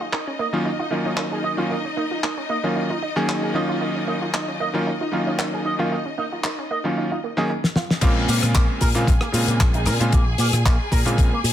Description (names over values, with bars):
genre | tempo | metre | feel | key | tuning
nu-disco, nu disco | 114 BPM | 4/4 | swing 54% on 16ths | Bb minor | A4 = 440 Hz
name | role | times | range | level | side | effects
rich studio string section | sustained chords | 0.0-11.5 s | Eb4 to Ab5 | -30 LUFS | equal | sidechain pumping
analog pluck | arpeggios | 0.0-7.9 s | Bb3 to Bb4 | -30 LUFS | right 4 dB | chorus, sidechain pumping, tape echo
electric guitar with an envelope filter | riff | 0.1-11.4 s | Bb3 to Eb5 | -30 LUFS | right 2 dB | lush chorus, low-pass filter, dub echo
damped 70s drum kit | drums | 0.1-11.5 s | crash cymbal, handclaps, hi-hat, rim click, shaker, snare drum | -24 LUFS | left 2 dB | low-pass filter on hats, studio reverb, low-pass filter on cymbals, low-pass filter on snare, low-pass filter on perc, low-pass filter on room
clear electric grand piano | accompaniment | 0.5-11.3 s | Db3 to Ab4 | -24 LUFS | equal | dub echo
picked electric bass with an envelope filter | bass | 8.0-11.5 s | Bb1 to Bb2 | -22 LUFS | equal | none
electronic kick drum | drums | 8.0-11.3 s | none | -18 LUFS | equal | studio reverb
room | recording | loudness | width
light reverb, small room ambience | dense, heavily limited modern master | -19 LUFS | side -11 dB against mid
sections
0.0-8.0 A section; 8.0-11.5 B section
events
filter sweep on drum 0.0-8.0; drum fill 7.6-8.0; drop 8.0-11.5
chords
0.0 Ebm9; 8.0 Bbm7